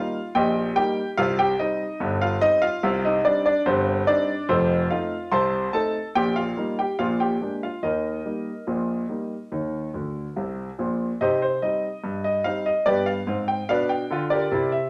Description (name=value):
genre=ragtime piano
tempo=72 BPM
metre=2/4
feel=straight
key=unclear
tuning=A4 = 440 Hz
part: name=clear concert grand piano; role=solo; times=0.0-14.9 s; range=F1 to C6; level=-24 LUFS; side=equal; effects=none
room=wet studio reverb, RT60 0.7 s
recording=none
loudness=-24 LUFS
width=mono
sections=0.0-11.2 A section; 11.2-14.9 B section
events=grand piano fill 9.9-11.2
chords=0.0 Eb; 1.2 Cm; 4.5 F7; 6.2 Eb/Bb; 7.0 Bb7; 7.8 Eb; 11.2 Cm; 12.9 G7